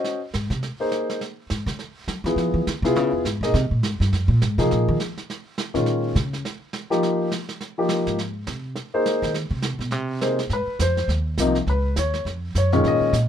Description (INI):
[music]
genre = jazz piano trio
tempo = 206 BPM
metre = 4/4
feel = swing 59% on 8ths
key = unclear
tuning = A4 = 440 Hz
[part]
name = warm grand piano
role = melody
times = 0.0-13.1 s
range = Bb2 to Eb5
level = -22 LUFS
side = left 2 dB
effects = none
[part]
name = vintage brush drum kit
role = drums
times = 0.0-13.3 s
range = brushed snare drum, hi-hat, snare drum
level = -31 LUFS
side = right 4 dB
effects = none
[part]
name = upright bass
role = bass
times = 0.3-13.3 s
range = C2 to Gb3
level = -23 LUFS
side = right 1 dB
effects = none
[sound]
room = light reverb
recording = minimal, uncompressed stereo recording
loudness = -21 LUFS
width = side -9 dB against mid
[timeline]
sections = 0.0-10.5 A section; 10.5-13.3 B section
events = upright bass solo 0.0-10.5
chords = 0.0 Abadd9; 1.2 Db5; 2.4 Ddim7; 3.5 Ab9; 4.7 Bb7sus4; 5.3 Bbmadd11; 5.9 Bbm7; 7.0 Ebadd9; 8.2 Abadd9; 10.5 Ab; 11.7 Db9